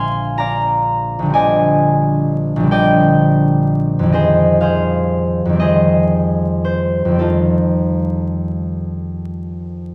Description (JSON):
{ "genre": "classical, solo harp piece", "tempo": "32-44 BPM (dotted quarters)", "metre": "6/8", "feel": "rubato", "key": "unclear", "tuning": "A4 = 439 Hz", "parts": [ { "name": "concert harp", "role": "solo", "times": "0.0-9.9 s", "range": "Bb1 to C6", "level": "-16 LUFS", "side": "equal", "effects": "none" } ], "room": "wet recital hall reverb, RT60 1.8 s", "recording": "heard from further back in the room, vinyl crackle", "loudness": "-16 LUFS", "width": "mono", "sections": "0.0-9.9 A section", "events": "none", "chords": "0.0 Bb9; 1.3 Abmaj7#11/Bb; 4.1 Fm9; 7.2 F9" }